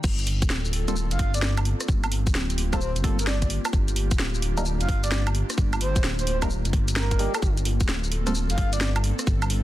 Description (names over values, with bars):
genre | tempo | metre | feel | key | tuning
UK garage, two-step garage | 130 BPM | 4/4 | swing 66% on 16ths | G minor | A4 = 440 Hz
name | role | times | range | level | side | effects
airy breathy pad | sustained chords | 0.3-9.6 s | Bb3 to A4 | -35 LUFS | equal | chorus, sidechain pumping
dark detuned saw bass | bass | 0.0-9.6 s | D1 to G1 | -25 LUFS | equal | tube saturation
electronic kick drum | drums | 0.0-9.4 s | none | -24 LUFS | equal | overdrive
garage drum kit | drums | 0.0-9.6 s | crash cymbal, hi-hat, rim click, shaker, snare drum, woodblock | -29 LUFS | right 1 dB | overdrive
percussive organ stab | stabs | 0.9-8.3 s | G3 to Bb4 | -32 LUFS | equal | chorus, phaser, dub echo
breathy flute-like synth lead | melody | 1.1-8.9 s | Bb4 to F5 | -33 LUFS | right 1 dB | lush chorus, dub echo
room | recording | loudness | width
little or no reverb | dense, heavily limited modern master | -22 LUFS | side -15 dB against mid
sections
0.0-9.6 A section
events
drop 0.0-9.6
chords
0.0 Gm11; 3.7 Ebmaj7; 7.4 Gm11